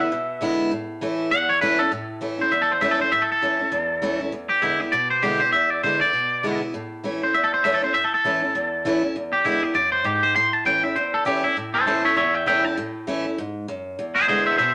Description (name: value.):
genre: rock.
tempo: 199 BPM.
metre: 4/4.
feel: swing 59% on 8ths.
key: A major.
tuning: A4 = 440 Hz.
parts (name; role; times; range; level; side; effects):
twangy electric guitar; melody; 0.0-14.7 s; E4 to C6; -22 LUFS; equal; spring reverb.
picked steel-string acoustic guitar; accompaniment; 0.0-14.7 s; E2 to E4; -28 LUFS; equal; none.
room: wet studio ambience, RT60 0.5 s.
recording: none.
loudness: -22 LUFS.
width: mono.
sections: 0.0-1.9 A section; 1.9-11.6 B section; 11.6-14.7 C section.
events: clean electric guitar solo 11.6-14.7.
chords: 0.0 E7; 0.7 A; 4.3 E7; 6.7 A; 9.1 E7; 10.4 A; 14.0 E7.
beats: 0.11 0.41 | 0.71 1.01 1.31 1.62 | 1.92 2.22 2.52 2.82 | 3.12 3.42 3.73 4.03 | 4.33 4.63 4.93 5.23 | 5.53 5.83 6.13 6.43 | 6.74 7.04 7.34 7.64 | 7.94 8.24 8.54 8.85 | 9.15 9.45 9.75 10.05 | 10.36 10.66 10.96 11.26 | 11.56 11.87 12.17 12.47 | 12.77 13.07 13.38 13.68 | 13.98 14.28 14.59.